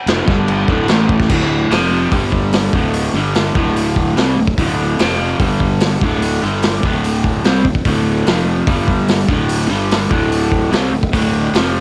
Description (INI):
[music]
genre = garage rock duo or trio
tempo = 146 BPM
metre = 4/4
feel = straight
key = unclear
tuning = A4 = 440 Hz
[part]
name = crunchy overdriven guitar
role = riff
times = 0.1-11.8 s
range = D2 to C4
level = -18 LUFS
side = equal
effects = cassette tape
[part]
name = fuzz fingered electric bass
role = bass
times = 0.1-11.8 s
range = D1 to C2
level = -23 LUFS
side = equal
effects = overdrive, tube saturation
[part]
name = vintage drum kit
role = drums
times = 0.1-11.6 s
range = crash cymbal, hi-hat, kick drum, snare drum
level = -20 LUFS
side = equal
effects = cassette tape
[sound]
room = light reverb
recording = home recording on cassette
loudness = -15 LUFS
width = mono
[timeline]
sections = 0.0-1.3 A section; 1.3-11.8 B section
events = none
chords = 0.3 G5; 0.7 D5; 0.9 A5; 1.3 D5; 1.7 F5; 2.1 G5; 2.7 D5; 3.1 G5; 3.6 D5; 5.0 F5; 5.4 G5; 6.0 D5; 6.4 G5; 6.8 D5; 8.3 F5; 8.7 G5; 9.3 D5; 9.7 G5; 10.1 D5